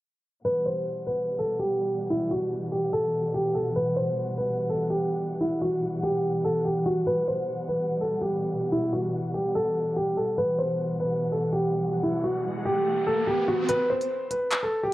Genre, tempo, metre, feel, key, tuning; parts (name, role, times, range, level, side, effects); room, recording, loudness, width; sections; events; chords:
hip hop, drill; 145 BPM; 4/4; half-time; E minor; A4 = 440 Hz
dark concert grand piano; melody; 0.4-14.9 s; E4 to C5; -25 LUFS; equal; low-pass filter
dark symphonic string section; sustained chords; 0.4-13.7 s; B2 to F#5; -31 LUFS; equal
riser; sound effects; 11.8-13.7 s; -34 LUFS; right 1 dB
drill drum kit; drums; 13.7-14.6 s; handclaps, hi-hat; -29 LUFS; equal
light reverb, studio ambience; worn, warbling old tape, cassette tape, warbly pitch drift, low-pass filter; -24 LUFS; side -16 dB against mid
0.4-13.7 A section; 13.7-14.9 B section
filter sweep 0.4-13.7; riser 11.8-13.7; kick muted 13.7-14.9
0.4 Emadd9; 13.7 N.C.